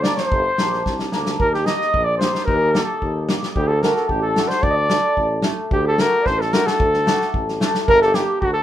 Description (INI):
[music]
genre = klezmer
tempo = 111 BPM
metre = 2/4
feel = straight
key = D phrygian dominant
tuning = A4 = 440 Hz
[part]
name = mellow cornet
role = melody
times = 0.0-8.6 s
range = F#4 to Eb5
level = -19 LUFS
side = left 1 dB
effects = none
[part]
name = mellow clarinet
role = second line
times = 0.0-8.6 s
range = F#4 to Eb5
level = -25 LUFS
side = right 3 dB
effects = none
[part]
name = hammered dulcimer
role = accompaniment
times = 0.0-8.3 s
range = A3 to Bb4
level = -26 LUFS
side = left 1 dB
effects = none
[part]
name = warm tuba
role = bass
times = 0.0-8.6 s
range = G1 to Eb2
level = -24 LUFS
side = equal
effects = none
[part]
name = warm soul drum kit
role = drums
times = 0.0-8.5 s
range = kick drum, snare drum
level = -23 LUFS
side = equal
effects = none
[sound]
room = moderate studio reverb, RT60 0.5 s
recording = minimal, uncompressed stereo recording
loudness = -16 LUFS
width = side -11 dB against mid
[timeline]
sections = 0.0-5.7 A section; 5.7-8.6 A section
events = drum fill 0.9-1.4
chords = 0.0 Gm; 1.4 Eb; 3.6 D5; 5.7 D; 7.9 Gm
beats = | 0.32 0.86 | 1.40 1.94 | 2.48 3.02 | 3.56 4.10 | 4.64 5.18 | 5.72 6.26 | 6.80 7.34 | 7.88 8.42